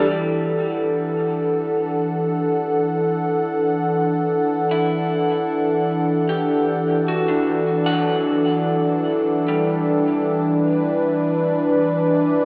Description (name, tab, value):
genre	ambient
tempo	free time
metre	none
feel	none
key	E minor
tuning	A4 = 440 Hz
part	warm analog pad	sustained chords	0.0-12.4 s	E3 to F#5	-18 LUFS	equal	chorus
part	electric guitar through a small old amp	arpeggios	0.0-12.4 s	F#3 to F#5	-27 LUFS	equal	diffuse ambient delay
room	wet concert hall reverb, RT60 2.2 s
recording	AM radio sound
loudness	-17 LUFS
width	side -35 dB against mid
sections	0.1-12.4 A section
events	fade-in on clean electric guitar 0.1-12.4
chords	0.1 Em11